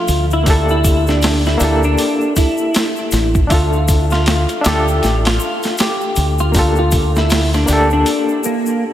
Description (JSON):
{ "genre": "trip hop", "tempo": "79 BPM", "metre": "4/4", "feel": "swing 59% on 16ths", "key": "unclear", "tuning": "A4 = 440 Hz", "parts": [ { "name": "clean electric guitar", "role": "melody", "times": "0.0-8.8 s", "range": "Bb3 to G4", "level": "-18 LUFS", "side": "equal", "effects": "analog chorus, tape echo" }, { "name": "overdriven reed electric piano", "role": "accompaniment", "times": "0.0-8.9 s", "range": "F3 to E5", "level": "-20 LUFS", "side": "left 1 dB", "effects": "tremolo, tape echo" }, { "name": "deep dub fingered electric bass", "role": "bass", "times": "0.1-8.0 s", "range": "A1 to D2", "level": "-16 LUFS", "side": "equal", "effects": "none" }, { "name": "boom bap sampler-style drum kit", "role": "drums", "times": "0.1-8.3 s", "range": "hi-hat, kick drum, snare drum", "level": "-18 LUFS", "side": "equal", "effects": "small room reverb" }, { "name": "egg shaker", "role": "percussion", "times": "0.1-8.8 s", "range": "none", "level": "-30 LUFS", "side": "left 6 dB", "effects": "none" } ], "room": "moderate lush hall reverb, RT60 2.8 s", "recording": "dreamy mix soaked in reverb", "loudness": "-12 LUFS", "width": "side -12 dB against mid", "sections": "0.0-8.9 A section", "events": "none", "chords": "0.5 Gmadd9/D; 3.5 Dmadd9; 6.5 Gmadd9/D", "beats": "| 0.47 1.23 1.99 2.75 | 3.50 4.26 5.02 5.78 | 6.54 7.30 8.06 8.82" }